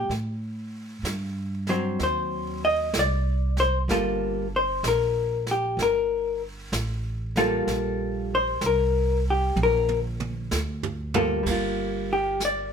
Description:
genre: jazz ballad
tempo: 63 BPM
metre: 4/4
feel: swing 66% on 8ths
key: G minor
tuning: A4 = 440 Hz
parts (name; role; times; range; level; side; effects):
- vintage hollow-body jazz guitar; accompaniment; 0.0-12.7 s; F#3 to Eb5; -24 LUFS; left 2 dB; none
- upright bass; bass; 0.0-12.7 s; G1 to A2; -29 LUFS; right 1 dB; none
- jazz brush drum kit; drums; 0.1-12.7 s; brushed snare drum, hi-hat, kick drum, ride cymbal, snare drum, toms; -33 LUFS; right 3 dB; none
room: light reverb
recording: minimal, uncompressed stereo recording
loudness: -23 LUFS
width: side -7 dB against mid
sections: 0.0-11.5 A section; 11.5-12.7 B section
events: drum fill 9.6-11.5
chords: 0.1 Gsus24; 2.0 Cdim; 3.9 Gm9; 11.5 Gm7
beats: | 0.11 1.05 2.00 2.95 | 3.89 4.84 5.79 6.73 | 7.68 8.62 9.57 10.52 | 11.46 12.41

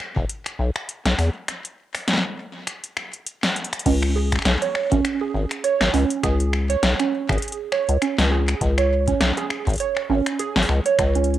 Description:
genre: IDM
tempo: 101 BPM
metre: 4/4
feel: swing 56% on 16ths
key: C# minor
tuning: A4 = 440 Hz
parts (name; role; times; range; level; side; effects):
- electro analog drum machine; drums; 0.0-11.4 s; crash cymbal, finger snaps, hi-hat, snare drum; -24 LUFS; left 1 dB; tape echo
- deep acid bass; bass; 0.2-11.4 s; E1 to E2; -20 LUFS; left 1 dB; none
- electronic kick drum; drums; 0.2-0.3, 3.9-11.1 s; none; -26 LUFS; left 1 dB; none
- warbly dusty pluck; arpeggios; 3.9-11.2 s; C#4 to C#5; -22 LUFS; right 7 dB; ensemble chorus, cassette tape, analog delay
room: moderate small room ambience, RT60 0.5 s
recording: home recording on cassette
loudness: -19 LUFS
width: side -12 dB against mid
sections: 0.0-3.9 A section; 3.9-11.4 B section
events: break 1.5-3.9; drum fill 3.6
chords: 0.0 E5; 3.9 C#5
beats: 0.29 0.89 | 1.48 2.08 2.67 3.27 | 3.86 4.45 5.05 5.64 | 6.24 6.83 7.42 8.02 | 8.61 9.21 9.80 10.39 | 10.99

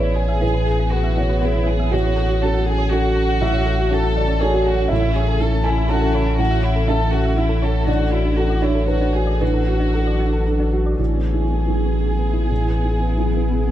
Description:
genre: neoclassical piano and strings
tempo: 120 BPM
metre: 3/4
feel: rubato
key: unclear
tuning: A4 = 445 Hz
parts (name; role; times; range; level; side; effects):
- warm chamber violin section; melody; 0.0-13.7 s; E4 to A4; -25 LUFS; equal; none
- felt-muted upright piano; accompaniment; 0.0-13.7 s; A2 to A5; -22 LUFS; right 1 dB; none
- granular cloud pad; sustained chords; 0.0-13.7 s; B3 to B4; -31 LUFS; left 1 dB; built-in reverb
- thumb-piano-like synth pluck; arpeggios; 0.0-10.9 s; D4 to A5; -26 LUFS; right 1 dB; chorus, tape echo
- saturated sub bass; bass; 0.0-13.7 s; A1; -20 LUFS; equal; none
room: moderate recital hall reverb, RT60 1.4 s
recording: dark, warm production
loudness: -16 LUFS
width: side -12 dB against mid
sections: 0.0-11.0 A section; 11.0-13.7 B section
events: none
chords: 0.0 E/A; 1.9 F#m/A; 4.9 A; 7.9 D/A; 11.0 E/A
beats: | 0.42 0.93 1.43 | 1.93 2.43 2.92 | 3.42 3.91 4.41 | 4.91 5.40 5.90 | 6.39 6.88 7.38 | 7.87 8.37 8.88 | 9.41 9.94 10.47 | 10.99 11.50 12.00 | 12.50 13.01 13.50

